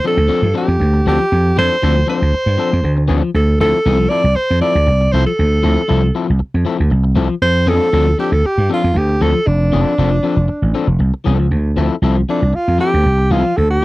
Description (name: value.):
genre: funk.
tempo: 118 BPM.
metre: 4/4.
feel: straight.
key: D minor.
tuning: A4 = 440 Hz.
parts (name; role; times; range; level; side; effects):
breathy alto saxophone; melody; 0.0-13.8 s; D4 to D5; -17 LUFS; right 1 dB; none.
electric guitar at the edge of break-up; accompaniment; 0.0-13.8 s; F3 to A4; -19 LUFS; left 5 dB; none.
vintage slap bass; bass; 0.2-13.8 s; F1 to G2; -14 LUFS; right 1 dB; none.
room: little or no reverb.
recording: dry, close 1970s-style studio recording.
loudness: -12 LUFS.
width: side -19 dB against mid.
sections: 0.0-11.5 A section; 11.5-13.8 B section.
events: alto saxophone solo 11.5-13.8.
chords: 0.0 F6; 3.4 Dm9; 7.4 F6; 11.5 Dm9.